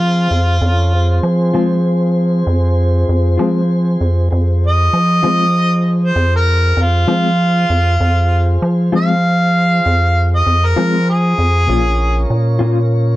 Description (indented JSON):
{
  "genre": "slow blues",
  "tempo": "65 BPM (dotted quarters)",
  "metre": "12/8",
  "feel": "straight",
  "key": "F minor",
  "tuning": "A4 = 438 Hz",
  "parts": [
    { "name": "warm harmonica", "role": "melody", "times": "0.0-12.3 s", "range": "F4 to F5", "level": "-17 LUFS", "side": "equal", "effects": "overdrive" },
    { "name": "mellow tonewheel organ", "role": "sustained chords", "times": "0.0-13.2 s", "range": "C4 to Db5", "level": "-23 LUFS", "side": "equal", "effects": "slow rotary speaker" },
    { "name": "rubbery square bass", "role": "bass", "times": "0.0-13.2 s", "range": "Bb1 to F3", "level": "-14 LUFS", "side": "equal", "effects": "none" },
    { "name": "mellow electric guitar", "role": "accompaniment", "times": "1.5-12.8 s", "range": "Bb2 to F4", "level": "-20 LUFS", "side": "left 5 dB", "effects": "tremolo" }
  ],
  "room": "light reverb, digital ambience",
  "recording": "dark, warm production",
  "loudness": "-12 LUFS",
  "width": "side -16 dB against mid",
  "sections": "0.0-13.2 A section",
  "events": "none",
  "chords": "0.0 Fm; 11.7 Bbm",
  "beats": "| 0.63 1.55 2.47 3.39 | 4.31 5.23 6.16 7.08 | 8.00 8.92 9.84 10.76 | 11.68 12.60"
}